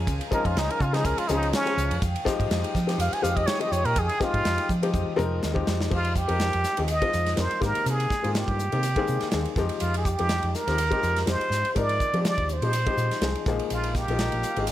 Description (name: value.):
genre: electric jazz fusion.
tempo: 123 BPM.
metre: 4/4.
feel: swing 54% on 16ths.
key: unclear.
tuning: A4 = 440 Hz.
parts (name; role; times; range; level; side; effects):
clear grand piano; accompaniment; 0.0-14.7 s; Eb3 to C5; -30 LUFS; left 5 dB; none.
warm studio string section; sustained chords; 0.0-5.9, 13.7-14.7 s; Ab3 to Eb6; -37 LUFS; right 1 dB; none.
hollow-body short-scale fingered electric bass; bass; 0.0-14.7 s; Ab1 to F3; -27 LUFS; right 1 dB; none.
modern studio drum kit; drums; 0.1-14.7 s; crash cymbal, hi-hat, kick drum, ride cymbal, snare drum, toms; -30 LUFS; right 1 dB; none.
trumpet with plunger mute; melody; 0.3-14.7 s; Db4 to Ab5; -27 LUFS; right 1 dB; none.
room: light reverb, small room ambience.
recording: none.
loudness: -22 LUFS.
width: side -13 dB against mid.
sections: 0.0-5.9 A section; 5.9-14.7 B section.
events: muted trumpet solo 0.0-5.9; drum fill 4.9-5.9.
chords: 0.0 Dbmaj7; 2.0 Fm9; 13.5 Bb7sus4.